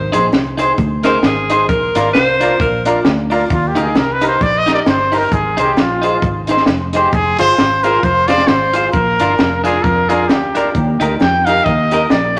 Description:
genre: ska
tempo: 132 BPM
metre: 4/4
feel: swing 57% on 8ths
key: Eb major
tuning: A4 = 441 Hz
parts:
  - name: edgy alto saxophone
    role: melody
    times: 0.0-2.8 s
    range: Ab4 to C5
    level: -19 LUFS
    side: equal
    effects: none
  - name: fingered electric bass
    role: bass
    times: 0.0-12.4 s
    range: F1 to F2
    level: -24 LUFS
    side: equal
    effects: none
  - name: clean electric guitar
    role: accompaniment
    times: 0.1-12.4 s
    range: D4 to C5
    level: -21 LUFS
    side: equal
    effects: tape echo
  - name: honky-tonk upright piano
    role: stabs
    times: 0.1-12.4 s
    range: C4 to F5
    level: -24 LUFS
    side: equal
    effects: none
  - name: compact cocktail drum kit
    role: drums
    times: 0.1-12.4 s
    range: hi-hat, kick drum, snare drum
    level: -20 LUFS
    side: equal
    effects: none
  - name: cabasa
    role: percussion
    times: 0.1-12.4 s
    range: none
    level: -49 LUFS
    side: equal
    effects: none
  - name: breathy trumpet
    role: melody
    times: 3.5-12.4 s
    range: F4 to G5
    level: -18 LUFS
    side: equal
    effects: none
room: wet large studio reverb, RT60 1.5 s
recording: none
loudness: -14 LUFS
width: mono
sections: 0.0-3.5 A section; 3.5-12.4 A section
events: alto saxophone solo 0.0-3.5; trumpet solo 3.5-12.4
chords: 0.0 Ab; 1.7 Bb; 3.5 Eb; 5.3 Ab; 7.1 Fm; 8.9 Bb; 10.8 Eb

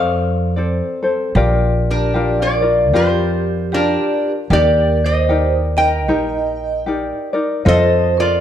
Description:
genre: Hawaiian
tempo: 76 BPM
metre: 4/4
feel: swing 59% on 8ths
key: Bb major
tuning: A4 = 440 Hz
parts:
  - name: lap resonator guitar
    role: melody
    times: 0.0-8.4 s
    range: D4 to G5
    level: -18 LUFS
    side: left 1 dB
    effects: none
  - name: tenor ukulele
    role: accompaniment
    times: 0.0-8.4 s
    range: C4 to Eb5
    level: -20 LUFS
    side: left 2 dB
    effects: none
  - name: upright bass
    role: bass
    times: 0.0-8.4 s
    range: Bb1 to F2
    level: -18 LUFS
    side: right 1 dB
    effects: none
  - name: vibraphone with medium hard mallets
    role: second line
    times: 1.9-8.4 s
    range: G4 to Eb5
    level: -22 LUFS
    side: right 6 dB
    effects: none
room: moderate recital hall reverb, RT60 1.4 s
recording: dark, warm production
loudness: -14 LUFS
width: side -10 dB against mid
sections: 0.0-1.4 A section; 1.4-8.4 B section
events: none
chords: 0.0 Bbmaj9 (rootless); 1.4 Bb6; 4.5 Ebmaj7; 7.7 F7

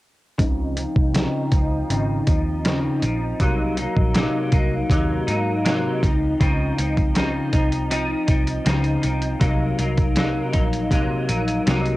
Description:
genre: indie pop, bedroom pop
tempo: 80 BPM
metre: 4/4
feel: straight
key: Db major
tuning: A4 = 441 Hz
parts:
  - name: semi-hollow electric guitar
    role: accompaniment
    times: 0.4-12.0 s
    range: C3 to Eb4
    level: -22 LUFS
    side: left 1 dB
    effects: ensemble chorus, vibrato effect, low-pass filter, cassette tape
  - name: vintage muted picked electric bass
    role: bass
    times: 0.4-12.0 s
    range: Ab1 to Ab2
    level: -25 LUFS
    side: equal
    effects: tube saturation
  - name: lo-fi sampler-style drum kit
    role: drums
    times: 0.4-12.0 s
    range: hi-hat, kick drum, snare drum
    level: -21 LUFS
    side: equal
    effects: overdrive, cassette tape
room: light reverb, digital ambience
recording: home recording on cassette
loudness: -18 LUFS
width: side -18 dB against mid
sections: 0.4-6.4 A section; 6.4-12.0 B section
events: filter sweep on clean electric guitar 0.4-6.4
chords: 0.4 Dbmaj9; 3.4 Ab9; 6.0 Dbmaj9; 9.4 Ebm6

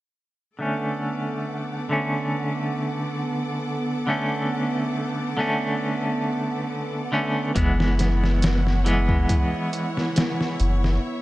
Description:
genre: trip hop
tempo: 69 BPM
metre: 4/4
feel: straight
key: B dorian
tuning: A4 = 440 Hz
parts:
  - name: clean electric guitar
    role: accompaniment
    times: 0.6-11.0 s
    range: D3 to C#4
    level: -25 LUFS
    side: equal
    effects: tremolo, low-pass filter, tape echo
  - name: bright studio string section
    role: sustained chords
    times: 0.6-11.2 s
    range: B3 to D6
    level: -29 LUFS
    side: right 1 dB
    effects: none
  - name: soft dub sub bass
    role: bass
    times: 7.6-11.0 s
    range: F#1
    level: -21 LUFS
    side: equal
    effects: none
  - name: trip hop sampler-style drum kit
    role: drums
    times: 7.6-11.0 s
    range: hi-hat, kick drum, snare drum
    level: -24 LUFS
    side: equal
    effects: none
room: light reverb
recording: dark, warm production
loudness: -22 LUFS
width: side -17 dB against mid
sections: 0.6-11.2 A section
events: break 11.0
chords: 0.6 Bm7; 7.6 F#7sus4

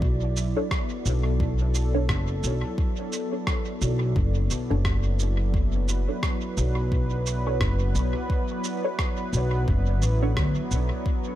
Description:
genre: ambient dub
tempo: 87 BPM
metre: 4/4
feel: swing 59% on 16ths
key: B minor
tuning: A4 = 440 Hz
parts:
  - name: warm analog pad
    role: sustained chords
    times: 0.0-11.4 s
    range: F#3 to D5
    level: -30 LUFS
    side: equal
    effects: chorus, tremolo
  - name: upright bass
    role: bass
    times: 0.0-10.9 s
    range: F#1 to D2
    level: -24 LUFS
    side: equal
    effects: none
  - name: electronic kick drum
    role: drums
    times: 0.0-11.2 s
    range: none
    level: -26 LUFS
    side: equal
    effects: none
  - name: electronic shaker and rim click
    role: drums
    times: 0.4-10.9 s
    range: none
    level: -35 LUFS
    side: right 2 dB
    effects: dub echo
  - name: filtered dub chord stab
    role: stabs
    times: 0.6-10.4 s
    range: D4 to C#5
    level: -35 LUFS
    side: right 1 dB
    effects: phaser, analog chorus, dub echo
room: little or no reverb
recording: none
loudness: -23 LUFS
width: side -13 dB against mid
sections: 0.0-11.4 A section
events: filter sweep on synth stab 0.0-11.4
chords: 0.0 Bm7

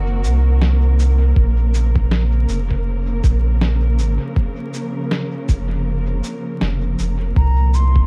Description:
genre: ambient dub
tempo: 80 BPM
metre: 4/4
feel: swing 58% on 16ths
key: Bb minor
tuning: A4 = 440 Hz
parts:
  - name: muted studio string section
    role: sustained chords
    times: 0.0-8.1 s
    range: Bb2 to Bb4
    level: -28 LUFS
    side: equal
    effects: none
  - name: soft dub sub bass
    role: bass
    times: 0.0-8.1 s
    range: F1 to C2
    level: -18 LUFS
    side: equal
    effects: none
  - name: electronic shaker and snare drum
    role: drums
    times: 0.2-7.9 s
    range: none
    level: -27 LUFS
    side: equal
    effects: overdrive, dub echo
  - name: electronic kick drum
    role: drums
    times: 1.4-8.1 s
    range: none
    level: -19 LUFS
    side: equal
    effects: overdrive
  - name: mellow jazz flute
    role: melody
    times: 7.4-8.1 s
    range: Bb5 to C6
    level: -28 LUFS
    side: equal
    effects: none
room: studio reverb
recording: dark, warm production, vinyl crackle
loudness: -18 LUFS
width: mono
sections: 0.0-8.1 A section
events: none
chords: 0.0 Cm7b5; 1.4 Bbmadd9; 7.4 Cm7

